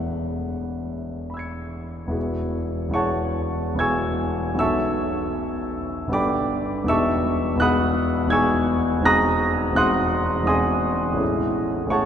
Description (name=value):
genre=classical, impressionist solo piano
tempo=66-85 BPM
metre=3/4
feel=rubato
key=E major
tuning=A4 = 440 Hz
part: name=warm concert grand piano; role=solo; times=0.0-12.1 s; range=E1 to C#7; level=-20 LUFS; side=equal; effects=none
room=wet cathedral reverb, RT60 6.2 s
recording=heard from further back in the room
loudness=-20 LUFS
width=side -8 dB against mid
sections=0.0-2.2 A section; 2.2-12.1 A section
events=none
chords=0.0 E6; 2.2 E69; 4.6 B9sus4; 6.1 Gadd9; 6.9 Emaj9; 9.1 G#9/E; 11.2 Amaj7